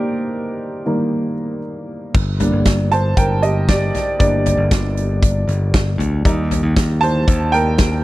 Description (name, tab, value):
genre	piano-driven pop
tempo	117 BPM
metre	4/4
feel	straight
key	G minor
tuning	A4 = 440 Hz
part	warm upright piano	accompaniment	0.0-8.0 s	Eb3 to A5	-19 LUFS	right 1 dB	none
part	modern bright picked electric bass	bass	2.1-8.0 s	G1 to Eb2	-18 LUFS	equal	none
part	huge arena drum kit	drums	2.1-7.9 s	crash cymbal, hi-hat, kick drum, snare drum, toms	-18 LUFS	equal	none
room	little or no reverb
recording	dry, close 1970s-style studio recording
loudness	-15 LUFS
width	side -17 dB against mid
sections	0.0-2.1 A section; 2.1-8.0 B section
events	upright piano solo 0.0-2.1, 2.1-8.0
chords	0.0 Eb; 2.1 Gm; 6.2 Eb